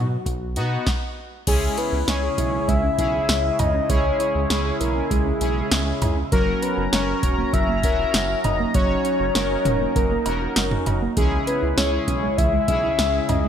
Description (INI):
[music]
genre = synth-pop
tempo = 99 BPM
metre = 4/4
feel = straight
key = C# dorian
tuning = A4 = 440 Hz
[part]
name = soft octave-layered synth lead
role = melody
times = 0.0-13.5 s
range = F#4 to E5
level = -24 LUFS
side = left 2 dB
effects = chorus
[part]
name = analog synth brass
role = accompaniment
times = 0.0-13.5 s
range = B3 to C#5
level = -28 LUFS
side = left 1 dB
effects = chorus
[part]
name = round analog bass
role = bass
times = 0.0-13.5 s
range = E1 to B2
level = -26 LUFS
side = equal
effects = none
[part]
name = electro analog drum machine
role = drums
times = 0.3-13.4 s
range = cowbell, crash cymbal, hi-hat, kick drum, snare drum, toms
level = -24 LUFS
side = equal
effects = none
[part]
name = chorused pulse-width pad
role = sustained chords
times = 1.5-13.5 s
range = C#3 to A#5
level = -29 LUFS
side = equal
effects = none
[part]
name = soft round pluck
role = arpeggios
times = 1.5-13.5 s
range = E3 to G#5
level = -30 LUFS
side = right 7 dB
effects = chorus
[sound]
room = moderate plate reverb, RT60 2.0 s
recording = bright 1980s-style digital production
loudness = -19 LUFS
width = side -8 dB against mid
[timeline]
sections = 0.0-1.5 A section; 1.5-13.5 B section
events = none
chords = 0.0 B; 1.5 C#m; 6.3 F#; 11.2 C#m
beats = 0.26 0.87 | 1.47 2.08 2.68 3.29 | 3.90 4.50 5.11 5.71 | 6.32 6.93 7.53 8.14 | 8.74 9.35 9.96 10.56 | 11.17 11.78 12.38 12.99